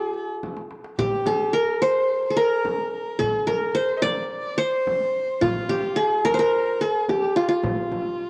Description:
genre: Arabic maqam ensemble.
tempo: 108 BPM.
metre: 4/4.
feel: straight.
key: F maqam rast.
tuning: A4 = 440 Hz.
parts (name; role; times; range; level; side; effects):
qanun; melody; 0.0-8.3 s; F4 to D5; -24 LUFS; equal; cassette tape.
dark violin; second line; 0.0-8.3 s; F4 to E5-49c; -35 LUFS; equal; cassette tape.
darbuka; percussion; 0.0-8.3 s; none; -37 LUFS; equal; none.
frame drum; percussion; 0.4-8.0 s; none; -37 LUFS; equal; none.
room: light reverb.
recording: home recording on cassette.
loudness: -23 LUFS.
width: mono.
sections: 0.0-8.3 A section.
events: drum fill 0.4-1.0.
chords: none.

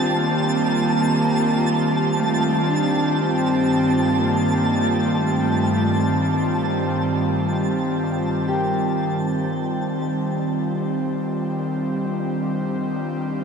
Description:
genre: ambient.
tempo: free time.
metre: none.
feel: none.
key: G minor.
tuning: A4 = 439 Hz.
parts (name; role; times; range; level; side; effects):
dark cello; melody; 0.0-8.7 s; G3 to D4; -24 LUFS; equal; shimmer reverb, ping-pong delay.
airy breathy pad; sustained chords; 0.0-13.4 s; G2 to G4; -21 LUFS; equal; chorus, shimmer reverb.
twinkling granular texture; texture; 0.0-9.2 s; A5; -27 LUFS; right 2 dB; built-in reverb, shimmer reverb.
Celtic harp; arpeggios; 8.5-10.8 s; G4 to Bb4; -30 LUFS; left 3 dB; shimmer reverb, ping-pong delay.
analog drone; drone; 13.1-13.4 s; none; barely audible; none; none.
room: wet huge ambient reverb, RT60 7.6 s.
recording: none.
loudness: -19 LUFS.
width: side -6 dB against mid.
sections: 0.0-9.2 A section; 9.2-13.4 B section.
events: none.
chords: 0.0 Gmadd9; 3.2 Ebadd9/G; 9.2 Gm.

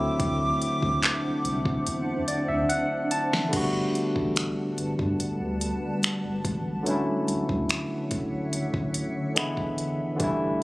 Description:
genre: contemporary R&B.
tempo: 72 BPM.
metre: 4/4.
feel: straight.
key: D major.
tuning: A4 = 440 Hz.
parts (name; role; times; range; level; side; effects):
breathy silver concert flute; melody; 0.0-2.3 s; D6; -30 LUFS; equal; ping-pong delay.
barky tine electric piano; accompaniment; 0.0-10.6 s; D3 to A5; -27 LUFS; equal; medium stereo tremolo.
granular cloud pad; sustained chords; 0.0-10.6 s; D3 to A5; -33 LUFS; equal; built-in reverb, sidechain pumping.
warm sub bass; bass; 0.0-10.5 s; D1 to G2; -34 LUFS; equal; none.
smooth R&B drum kit; drums; 0.2-10.4 s; crash cymbal, finger snaps, handclaps, hi-hat, kick drum, snare drum; -28 LUFS; equal; none.
room: light reverb.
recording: recorded on a phone in the room, club reverb.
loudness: -24 LUFS.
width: side -20 dB against mid.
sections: 0.0-3.5 A section; 3.5-10.6 B section.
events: drum fill 1.9-3.5; tine electric piano fill 1.9-3.5.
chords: 0.0 D9; 3.5 Gmaj9; 6.9 Dmaj9; 9.4 E7.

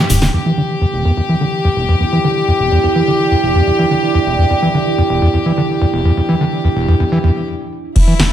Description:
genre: acid house.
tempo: 126 BPM.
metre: 4/4.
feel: straight.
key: unclear.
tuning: A4 = 440 Hz.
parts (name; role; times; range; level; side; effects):
bright chamber string section; sustained chords; 0.0-8.3 s; E4 to G4; -18 LUFS; left 2 dB; sidechain pumping.
overdriven acid bass; riff; 0.0-8.2 s; E1 to E3; -14 LUFS; equal; cassette tape, sidechain pumping, ping-pong delay.
deep dark ambient pad; texture; 0.0-7.5 s; E4 to G5; -21 LUFS; right 5 dB; chorus, built-in reverb, sidechain pumping.
warm sub bass; bass; 0.1-0.3, 8.2-8.3 s; D1 to E1; -17 LUFS; equal; sidechain pumping.
electro analog drum machine; drums; 0.1-0.3, 8.0-8.3 s; crash cymbal, hi-hat, snare drum, toms; -18 LUFS; equal; small room reverb.
electronic kick drum; drums; 8.0-8.1 s; none; -12 LUFS; equal; small room reverb.
room: wet plate reverb, RT60 1.5 s, digital ambience.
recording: dreamy mix soaked in reverb.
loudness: -12 LUFS.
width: side -10 dB against mid.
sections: 0.3-8.0 A section.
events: break 0.0-0.3; filter sweep on acid bass 0.3-8.0; stop 7.5-8.0.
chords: 0.3 Em7.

